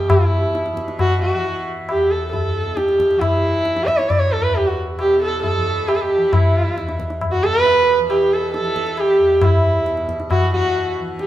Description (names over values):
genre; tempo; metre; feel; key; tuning
indian classical, Hindustani; 135 BPM; 7/4; straight; E raga kafi; A4 = 440 Hz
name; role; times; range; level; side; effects
dark sarangi; melody; 0.0-11.3 s; E4 to E5; -17 LUFS; right 1 dB; none
tanpura; drone; 0.0-11.3 s; E2 to E3; -29 LUFS; equal; none
tabla; percussion; 0.1-11.3 s; none; -21 LUFS; left 1 dB; none
room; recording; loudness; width
wet large studio reverb, RT60 1.4 s; band playing live in one room; -15 LUFS; side -13 dB against mid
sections
0.1-11.3 A section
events
none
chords
none